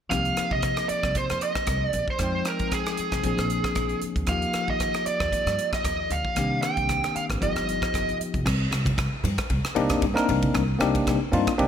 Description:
electric jazz fusion; 115 BPM; 4/4; swing 54% on 16ths; C minor; A4 = 443 Hz
biting lead guitar; melody; 0.1-8.2 s; Ab4 to G5; -27 LUFS; right 2 dB; overdrive
bell-like tine electric piano; accompaniment; 0.1-11.7 s; Eb3 to G5; -27 LUFS; left 2 dB; medium stereo tremolo
upright bass; bass; 0.1-11.7 s; F1 to Eb3; -29 LUFS; equal
crisp fusion drum kit; drums; 0.1-11.7 s; crash cymbal, hi-hat, kick drum, ride cymbal, rim click; -29 LUFS; equal; gated reverb
congas; percussion; 8.9-11.5 s; -32 LUFS; right 1 dB
light reverb, studio reverb; bright 1980s-style digital production; -23 LUFS; side -8 dB against mid
0.1-8.5 A section; 8.5-11.7 B section
0.1 Cm7; 2.2 Fm7; 3.2 Bb7; 4.3 Ebmaj9; 6.4 Cm7; 7.4 G7b13; 8.5 Cm9

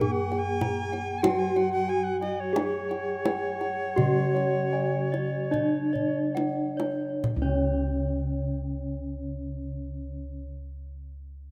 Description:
Javanese gamelan; 34-51 BPM; 4/4; straight; C# pelog barang; A4 = 440 Hz
gamelan-type bronze metallophone; melody; 0.0-10.5 s; C#4 to G#4-40c; -32 LUFS; equal
breathy bright alto recorder; second line; 0.0-6.2 s; C#5 to G#5+31c; -37 LUFS; equal
gamelan-type bronze metallophone; accompaniment; 0.0-10.5 s; C#3 to A#3+20c; -40 LUFS; equal
gamelan-type bossed gongs; arpeggios; 0.0-10.5 s; C#5 to G#5-40c; -38 LUFS; equal
gamelan-type bronze metallophone; arpeggios; 0.0-10.5 s; C#5 to A#5+20c; -38 LUFS; equal
gamelan-type bossed gongs; bass; 0.0-10.4 s; C#2 to F#4+30c; -34 LUFS; equal
kendang; percussion; 0.0-8.1 s; -34 LUFS; equal
moderate lush hall reverb, RT60 2.7 s; rough home demo mix; -28 LUFS; mono
0.0-7.2 A section; 7.2-11.5 B section
slowing down 0.0-7.2; drum fill 5.5-7.2

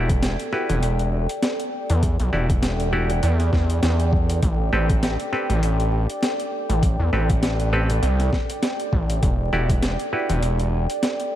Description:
glitch hop; 100 BPM; 4/4; swing 56% on 16ths; E minor; A4 = 440 Hz
clav; stabs; 0.0-10.4 s; C4 to D5; -28 LUFS; equal; sidechain pumping, tape echo
gritty driven synth bass; bass; 0.0-10.9 s; E1 to E2; -21 LUFS; equal; overdrive
deep dark ambient pad; texture; 0.0-11.4 s; A4 to G5; -28 LUFS; right 1 dB; chorus, built-in reverb, sidechain pumping
boom bap sampler-style drum kit; drums; 0.1-11.3 s; hi-hat, snare drum; -28 LUFS; equal; overdrive
electronic kick drum; drums; 0.1-9.8 s; -22 LUFS; equal; overdrive
light reverb, digital ambience; vinyl crackle; -19 LUFS; side -12 dB against mid
0.0-11.4 A section
0.0 Em9; 4.4 Am9; 9.2 Em9

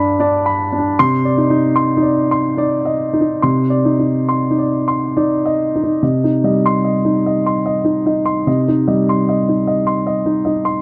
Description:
neoclassical minimalist piano; 72 BPM; 3/4; uneven beats, rubato; C harmonic minor, C minor from 6.0 s; A4 = 440 Hz
warm concert grand piano; solo; 0.0-10.8 s; G2 to C6; -16 LUFS; equal
little or no reverb; dry, close 1970s-style studio recording; -16 LUFS; mono
0.0-6.0 A section; 6.0-10.8 B section
0.0 G; 1.0 Cmadd9; 6.0 Cm

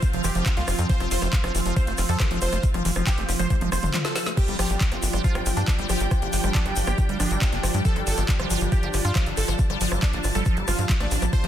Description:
psychedelic trance; 138 BPM; 4/4; straight; A4 = 440 Hz
supersaw stab; melody; 0.0-11.5 s; D4 to C5; -32 LUFS; right 2 dB; phaser, cassette tape, sidechain pumping, ping-pong delay
pulsing gated texture; sustained chords; 0.0-11.5 s; F3 to F4; -32 LUFS; equal; chorus, built-in reverb, sidechain pumping
electronic kick drum; drums; 0.0-11.4 s; -22 LUFS; equal; overdrive, studio reverb
garage drum kit; drums; 0.0-11.5 s; crash cymbal, handclaps, hi-hat, rim click, snare drum, toms; -30 LUFS; right 1 dB; overdrive, studio reverb
egg shaker; percussion; 0.0-11.4 s; -35 LUFS; left 6 dB
rich studio string section; texture; 0.0-11.5 s; C4 to A5; -33 LUFS; equal; sidechain pumping
liquid acid bass; riff; 0.1-11.5 s; E3 to F4; -31 LUFS; moving between left 6 dB and right 6 dB; phaser, auto-pan, sidechain pumping, ping-pong delay
tight sequencer bass; bass; 0.1-11.5 s; F1 to G2; -26 LUFS; equal
digital ambience; dense, heavily limited modern master; -21 LUFS; side -11 dB against mid
0.0-11.5 A section
drum fill 3.5-4.4; kick drops out 3.9-4.4
0.0 F5; 4.4 G5

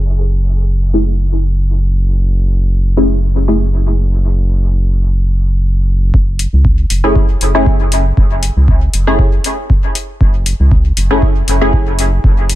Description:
dub techno; 118 BPM; 4/4; swing 54% on 16ths; F# minor; A4 = 435 Hz
round analog bass; bass; 0.0-12.6 s; F#1 to C#2; -13 LUFS; equal; sidechain pumping
filtered dub chord stab; stabs; 0.9-3.8, 7.0-11.9 s; A3 to G#4; -17 LUFS; left 1 dB; chorus, phaser, cassette tape, sidechain pumping, dub echo
electronic kick drum; drums; 6.1-12.3 s; -12 LUFS; equal
electronic hi-hat; drums; 6.4-12.6 s; -19 LUFS; left 3 dB
digital ambience; echo-heavy mix, low-pass filter; -10 LUFS; side -15 dB against mid
0.0-6.1 A section; 6.1-12.6 B section
filter sweep on synth stab 0.0-6.1; filter sweep 0.0-6.1
0.0 F#m9

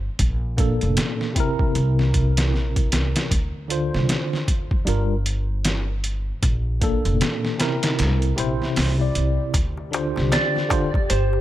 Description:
trip hop; 77 BPM; 4/4; swing 60% on 16ths; D minor; A4 = 440 Hz
upright bass; bass; 0.0-11.4 s; F1 to D2; -22 LUFS; equal
trip hop sampler-style drum kit; drums; 0.2-11.3 s; hi-hat, kick drum, snare drum; -23 LUFS; equal; overdrive
tine electric piano; accompaniment; 0.6-10.9 s; Bb2 to D5; -25 LUFS; equal; medium stereo tremolo, harmonic tremolo, vintage 12-bit sampler grit, tape echo
warbly tape-like pad; sustained chords; 9.9-11.4 s; G4; -31 LUFS; right 2 dB; chorus, built-in reverb
darbuka; percussion; 9.5-11.4 s; -32 LUFS; left 2 dB
electric slide guitar; melody; 10.3-11.4 s; C5 to D5; -23 LUFS; right 1 dB; tape echo
digital ambience; -19 LUFS; side -14 dB against mid
0.0-11.4 A section
0.2 Bbmaj7; 1.8 C7; 3.3 Dm7; 4.9 Gm7; 6.4 Bbmaj7; 8.0 C7; 9.5 Dm7

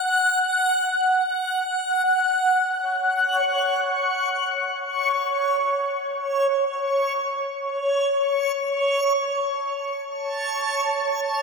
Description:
ambient; free time; A4 = 440 Hz
backwards swelling texture; solo; 0.0-11.4 s; C#5 to F#6; -20 LUFS; equal; built-in reverb, ping-pong delay
wet huge ambient reverb, RT60 8.7 s; -20 LUFS; side -4 dB against mid
0.0-2.5 A section; 2.5-11.4 B section
0.0 N.C.; 2.5 A/C#

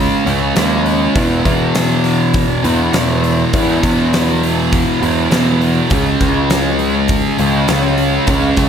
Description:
rock, shoegaze and dream pop; 101 BPM; 4/4; straight; A4 = 440 Hz
thick fuzz guitar; riff; 0.0-8.7 s; E2 to C#4; -14 LUFS; right 1 dB; distortion, analog chorus
growling picked electric bass; bass; 0.0-8.7 s; C#2 to E2; -18 LUFS; equal; overdrive
huge arena drum kit; drums; 0.3-8.7 s; hi-hat, kick drum, snare drum; -19 LUFS; equal
moderate plate reverb, RT60 1.3 s, small room ambience; dreamy mix soaked in reverb; -12 LUFS; side -8 dB against mid
0.0-8.7 A section
0.0 C#5; 1.2 E5; 5.9 C#5

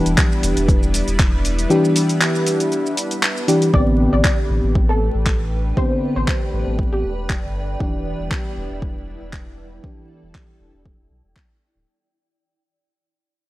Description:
deep house; 118 BPM; 4/4; swing 54% on 16ths; A minor; A4 = 436 Hz
warm analog pad; sustained chords; 0.0-11.9 s; G3 to B4; -28 LUFS; equal; chorus, sidechain pumping
mellow FM electric piano; stabs; 0.0-11.1 s; D3 to G4; -20 LUFS; left 1 dB; chorus, sidechain pumping, analog delay
warm sub bass; bass; 0.1-11.8 s; D1 to B1; -22 LUFS; equal; tube saturation, sidechain pumping
deep house drum kit; drums; 0.1-11.5 s; handclaps, hi-hat, shaker; -22 LUFS; equal; overdrive
electronic kick drum; drums; 0.2-11.5 s; -19 LUFS; equal; overdrive
soft round pluck; melody; 3.7-7.2 s; G4 to D5; -26 LUFS; left 1 dB; ensemble chorus
granular cloud pad; texture; 5.1-11.9 s; E4 to G5; -36 LUFS; right 2 dB; built-in reverb, sidechain pumping
light reverb, digital ambience; dry, gritty hardware recording, vinyl crackle; -16 LUFS; side -17 dB against mid
0.0-3.7 A section; 3.7-11.9 B section
drop 0.0-3.7; fade-out 3.7-11.9
0.0 Em7; 3.7 Am11; 7.8 Em7

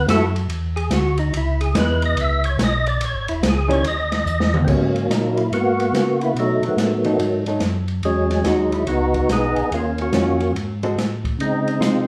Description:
soul jazz organ trio; 143 BPM; 4/4; swing 64% on 8ths; G# minor; A4 = 438 Hz
percussive tonewheel organ; melody; 0.0-12.1 s; D#3 to E5; -23 LUFS; equal; slow rotary speaker, overdrive, chorus vibrato
mellow tonewheel organ; bass; 0.0-12.1 s; E1 to C#3; -25 LUFS; equal; chorus vibrato, slow rotary speaker
open jazz drum kit; drums; 0.1-11.9 s; crash cymbal, hi-hat, kick drum, ride cymbal, snare drum, toms; -26 LUFS; equal
hollow-body jazz guitar; accompaniment; 1.7-12.1 s; D#3 to A4; -26 LUFS; equal
moderate large studio reverb, RT60 0.8 s; band playing live in one room; -20 LUFS; mono
0.0-4.7 A section; 4.7-12.1 B section
tonewheel organ solo 0.0-4.7; drum fill 4.3-4.7
0.0 Dadd9; 1.3 C#m7; 3.0 A#m7b5; 3.8 N.C.; 4.7 G#m11; 6.4 B7; 8.0 Emaj9; 9.7 D#m9; 10.6 G#7b9; 11.4 C#maj9

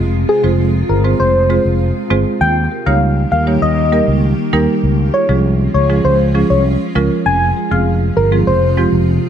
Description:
dancehall; 99 BPM; 4/4; straight; F minor; A4 = 440 Hz
granular cloud pad; sustained chords; 0.0-9.3 s; C3 to G4; -22 LUFS; right 1 dB; built-in reverb
fretless electric bass; bass; 0.0-9.2 s; F1 to Eb2; -15 LUFS; left 1 dB
soft struck synth lead; melody; 0.3-8.9 s; Ab4 to Ab5; -17 LUFS; left 2 dB; chorus, ping-pong delay
marimba with medium mallets; accompaniment; 0.3-8.9 s; F3 to Db5; -17 LUFS; right 3 dB
light reverb, digital ambience; dark, warm production; -11 LUFS; side -9 dB against mid
0.0-9.3 A section
0.0 Fm; 2.4 Eb; 4.8 Db; 7.3 Fm

